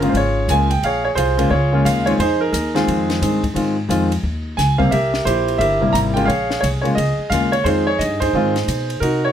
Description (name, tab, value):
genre	jazz piano trio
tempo	176 BPM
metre	4/4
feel	swing 63% on 8ths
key	F minor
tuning	A4 = 440 Hz
part	warm concert grand piano	melody	0.0-9.3 s	C3 to Bb5	-17 LUFS	equal	none
part	upright bass	bass	0.0-9.3 s	G1 to C3	-21 LUFS	equal	none
part	compact cocktail drum kit	drums	0.0-9.1 s	hi-hat, kick drum, ride cymbal, snare drum	-29 LUFS	left 2 dB	none
room	light reverb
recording	none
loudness	-15 LUFS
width	side -9 dB against mid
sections	0.0-9.3 A section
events	none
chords	0.0 Bbm7; 2.2 Fm7; 4.9 C7; 6.3 Bbm7; 7.7 Fm7